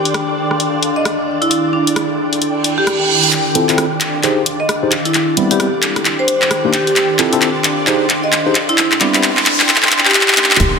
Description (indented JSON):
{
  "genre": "UK garage, two-step garage",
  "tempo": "132 BPM",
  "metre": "4/4",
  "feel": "swing 60% on 16ths",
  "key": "unclear",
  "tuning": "A4 = 439 Hz",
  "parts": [
    { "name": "soft string machine", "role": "sustained chords", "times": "0.0-10.8 s", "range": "D4 to G5", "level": "-24 LUFS", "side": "equal", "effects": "ensemble chorus, sidechain pumping" },
    { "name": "ethereal airy pad", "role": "texture", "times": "0.0-10.8 s", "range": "E4 to C6", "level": "-21 LUFS", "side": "equal", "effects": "ensemble chorus, built-in reverb, sidechain pumping" },
    { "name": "garage drum kit", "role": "drums", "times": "0.1-10.7 s", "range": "handclaps, hi-hat, rim click", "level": "-15 LUFS", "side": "left 1 dB", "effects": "low-pass filter on snare, studio reverb, low-pass filter on hats" },
    { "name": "marimba with medium hard mallets", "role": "melody", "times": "1.0-10.5 s", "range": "D4 to Eb5", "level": "-19 LUFS", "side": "right 1 dB", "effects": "low-pass filter" },
    { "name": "reverse cymbal, noise sweep and impact", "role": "sound effects", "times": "2.6-3.3, 9.1-10.8 s", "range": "none", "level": "-19 LUFS", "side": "right 4 dB", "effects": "none" },
    { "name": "tine electric piano", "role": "stabs", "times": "3.6-10.6 s", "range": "G3 to C5", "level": "-18 LUFS", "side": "left 1 dB", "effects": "medium stereo tremolo, low-pass filter, ping-pong delay" },
    { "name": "rubbery square bass", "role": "bass", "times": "10.6-10.8 s", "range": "D1", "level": "-19 LUFS", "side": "equal", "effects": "sidechain pumping" },
    { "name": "electronic kick drum", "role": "drums", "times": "10.6-10.7 s", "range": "none", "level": "-17 LUFS", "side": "equal", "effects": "studio reverb" }
  ],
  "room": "moderate lush hall reverb, RT60 2.0 s",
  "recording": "dense, heavily limited modern master, high-pass filter",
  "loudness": "-12 LUFS",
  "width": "side -5 dB against mid",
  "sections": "0.0-3.3 A section; 3.3-10.6 B section",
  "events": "reverse cymbal 2.6-3.3; build-up 3.3-10.6; drum fill 3.3-10.6; filter sweep on tine electric piano 3.3-10.6; filter sweep 3.3-10.6; impact 10.6",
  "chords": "0.0 Dm7; 4.2 Fm7; 4.9 Am7; 6.1 Cm7; 7.0 Dm7; 7.9 Fm7; 8.6 Am7; 9.7 Cm7",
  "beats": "0.14 0.60 1.05 | 1.51 1.96 2.42 2.87 | 3.33 3.78 4.24 4.69 | 5.14 5.60 6.05 6.51 | 6.96 7.42 7.87 8.33 | 8.78 9.24 9.69 10.14 | 10.60"
}